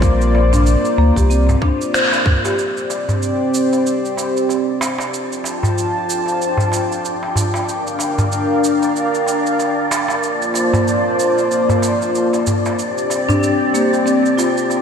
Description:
organic downtempo; 94 BPM; 4/4; swing 58% on 16ths; A4 = 439 Hz
warm analog pad; sustained chords; 0.0-14.8 s; Bb3 to A5; -17 LUFS; left 1 dB; chorus, sidechain pumping
warm sub bass; bass; 0.0-1.6 s; Bb1 to D2; -14 LUFS; equal; tube saturation, sidechain pumping
electronic cabasa and finger snaps; drums; 0.0-14.8 s; -25 LUFS; right 2 dB; studio reverb
electronic kick drum; drums; 0.0-2.4 s; -17 LUFS; equal; studio reverb
darbuka; percussion; 0.3-14.8 s; -23 LUFS; equal
marimba with soft mallets; arpeggios; 0.5-2.6, 13.3-14.8 s; Bb3 to C5; -20 LUFS; left 1 dB; ping-pong delay
wind-like tuned noise texture; texture; 3.3-14.8 s; D4 to D5; -24 LUFS; right 1 dB; built-in reverb
wet lush hall reverb, RT60 3.0 s; dreamy mix soaked in reverb; -14 LUFS; side -7 dB against mid
0.0-2.6 A section; 2.6-14.8 B section
band accent 1.9-2.3
0.0 Bb; 2.6 C5; 5.1 F; 7.7 Bb6/D; 10.2 Bb; 12.8 C5
| 0.02 0.66 1.30 1.94 | 2.58 3.21 3.85 4.49 | 5.13 5.77 6.40 7.04 | 7.68 8.32 8.96 9.60 | 10.23 10.87 11.51 12.15 | 12.79 13.43 14.06 14.70

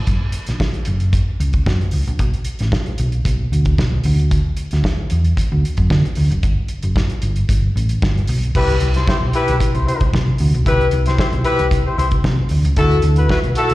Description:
disco; 113 BPM; 4/4; straight; A4 = 439 Hz
hollow-body short-scale fingered electric bass; bass; 0.1-13.7 s; F#1 to D3; -16 LUFS; equal
warm soul drum kit; drums; 0.1-13.7 s; crash cymbal, hi-hat, kick drum, snare drum; -20 LUFS; equal
dark horn section; stabs; 8.5-13.7 s; E4 to C5; -18 LUFS; left 2 dB; slapback echo
studio reverb; live gig heard through the venue's PA, recital hall reverb; -15 LUFS; side -18 dB against mid
0.1-8.5 A section; 8.5-13.7 B section
0.1 F#; 2.2 N.C.; 8.5 Cmaj7; 12.5 D69
| 0.08 0.61 1.14 1.67 | 2.20 2.73 3.25 3.79 | 4.31 4.84 5.37 5.90 | 6.43 6.96 7.49 8.02 | 8.55 9.07 9.60 10.13 | 10.66 11.19 11.72 12.24 | 12.77 13.30

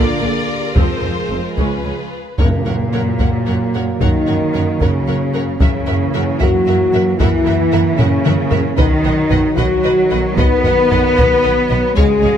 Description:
cinematic, epic orchestral film score; 75 BPM (dotted quarters); 6/8; straight; F# major; A4 = 440 Hz
rich symphonic violin section; melody; 0.0-12.3 s; Cb5 to F#5; -30 LUFS; left 2 dB
rich symphonic violin section; second line; 0.0-12.3 s; F4 to E5; -28 LUFS; left 1 dB
warm symphonic viola section; accompaniment; 0.0-12.3 s; D3 to B4; -26 LUFS; right 1 dB
mellow trombone section; sustained chords; 0.0-12.4 s; C#3 to Bb3; -23 LUFS; right 4 dB
warm French horn section; sustained chords; 0.0-12.4 s; A#3 to B4; -18 LUFS; left 4 dB
rich symphonic cello section; bass; 0.0-12.4 s; Db2 to B3; -20 LUFS; right 2 dB
rich symphonic double bass section; bass; 0.0-12.3 s; F1 to F#2; -21 LUFS; right 3 dB
taiko ensemble; drums; 0.8-12.4 s; -18 LUFS; equal
timpani; percussion; 2.4-3.2 s; F#2; -23 LUFS; equal
moderate scoring stage reverb, RT60 1.9 s; -13 LUFS; side -9 dB against mid
0.0-2.4 A section; 2.4-12.4 B section
drum fill 8.0-8.8
0.0 Bb; 0.8 Fm; 1.6 Db7; 2.4 F#; 5.6 F#7; 8.8 B
| 0.76 1.58 | 2.39 3.20 | 4.01 4.81 | 5.60 6.41 | 7.20 7.99 | 8.78 9.57 | 10.38 11.18 | 11.98

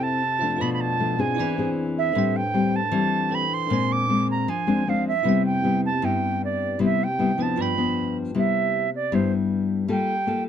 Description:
bossa nova; 155 BPM; 4/4; straight; C major; A4 = 439 Hz
reedy silver concert flute; melody; 0.0-10.4 s; C5 to D6; -25 LUFS; right 5 dB
bell-like tine electric piano; accompaniment; 0.0-8.4 s; C4 to E6; -32 LUFS; moving between left 2 dB and right 12 dB; auto-pan
nylon-string guitar; accompaniment; 0.0-10.5 s; G2 to A4; -23 LUFS; left 4 dB
light reverb; close, detailed microphones; -21 LUFS; side -9 dB against mid
0.0-8.3 A section; 8.3-10.5 B section
flute solo 8.3-10.5
0.0 Fmaj7; 0.6 Bm7b5; 1.4 E7b13; 2.2 Am11; 3.7 Bb9; 5.3 Cmaj7; 7.6 G7; 8.3 Cmaj7; 9.9 Gm9
0.21 | 0.60 0.99 1.38 1.77 | 2.15 2.54 2.93 3.32 | 3.70 4.09 4.48 4.87 | 5.25 5.64 6.03 6.41 | 6.80 7.19 7.57 7.96 | 8.35 8.73 9.12 9.50 | 9.89 10.28

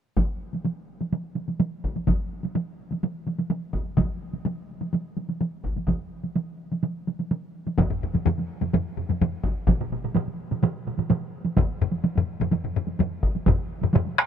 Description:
japanese traditional, taiko drum ensemble; 126 BPM; 4/4; straight
taiko ensemble; percussion; 0.2-14.2 s; -26 LUFS; right 2 dB
taiko ensemble; percussion; 0.2-13.6 s; -26 LUFS; left 1 dB
taiko ensemble; percussion; 7.8-14.3 s; -26 LUFS; left 4 dB
taiko ensemble; percussion; 9.7-14.3 s; -27 LUFS; right 4 dB
light reverb; -24 LUFS; side -8 dB against mid
0.2-7.8 A section; 7.8-14.3 B section
| 0.17 0.65 1.12 1.60 | 2.08 2.55 3.03 3.50 | 3.98 4.46 4.93 5.41 | 5.88 6.36 6.83 7.31 | 7.78 8.26 8.73 9.21 | 9.68 10.15 10.63 11.10 | 11.58 12.05 12.52 13.00 | 13.47 13.94

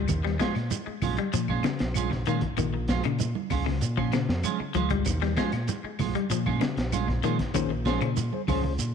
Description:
afrobeat; 96 BPM; 4/4; straight; Bb dorian; A4 = 445 Hz
electric guitar at the edge of break-up; arpeggios; 0.0-8.2 s; Db3 to Ab3; -31 LUFS; left 12 dB; tape echo
fingered electric bass; bass; 0.0-8.9 s; Bb1 to Bb2; -29 LUFS; equal
crunchy breakbeat drum kit; drums; 0.1-8.9 s; hi-hat, kick drum, snare drum; -32 LUFS; equal
claves; percussion; 0.1-8.6 s; -43 LUFS; left 14 dB
congas; percussion; 0.1-8.8 s; -35 LUFS; right 12 dB
shekere; percussion; 0.1-8.9 s; -34 LUFS; right 6 dB
clean electric guitar; stabs; 0.2-8.8 s; F3 to F4; -33 LUFS; right 11 dB; wide subtle chorus
reed electric piano; accompaniment; 7.5-8.7 s; Db4 to C5; -32 LUFS; left 13 dB; fast tremolo
light reverb, small room ambience; 1960s-style stereo with parts hard left and right; -25 LUFS; side -7 dB against mid
0.0-8.9 A section
0.0 Bbm7
| 0.09 0.71 1.33 1.96 | 2.58 3.20 3.82 4.44 | 5.07 5.69 6.31 6.93 | 7.55 8.17 8.79

